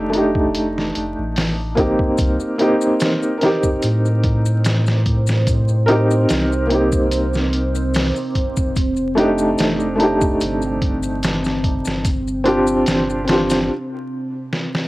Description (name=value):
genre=trip hop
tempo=73 BPM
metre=4/4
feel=swing 53% on 16ths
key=C dorian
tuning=A4 = 440 Hz
part: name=felt-muted upright piano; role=accompaniment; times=0.0-13.7 s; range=A3 to Bb4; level=-18 LUFS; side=equal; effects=tremolo, vintage 12-bit sampler grit, cassette tape, tape echo
part: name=warm sub bass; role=bass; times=0.0-13.7 s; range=F1 to A2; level=-21 LUFS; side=equal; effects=tube saturation
part: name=trip hop sampler-style drum kit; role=drums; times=0.1-14.9 s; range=hi-hat, kick drum, snare drum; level=-21 LUFS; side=equal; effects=none
part: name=deep dark ambient pad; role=sustained chords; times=4.2-14.9 s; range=C4 to C5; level=-25 LUFS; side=right 1 dB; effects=chorus, built-in reverb, cassette tape
part: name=maracas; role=percussion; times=2.2-13.7 s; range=none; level=-36 LUFS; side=left 7 dB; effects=none
room=light reverb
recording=home recording on cassette, vinyl crackle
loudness=-16 LUFS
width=side -19 dB against mid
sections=0.0-14.9 A section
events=break 13.7-14.9; drum fill 14.5-14.9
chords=0.0 F13; 2.2 Cm7; 8.8 F13; 12.0 G7sus4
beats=0.54 1.36 | 2.19 3.01 3.83 4.65 | 5.47 6.29 7.12 7.94 | 8.76 9.58 10.40 11.23 | 12.05 12.87 13.69 14.51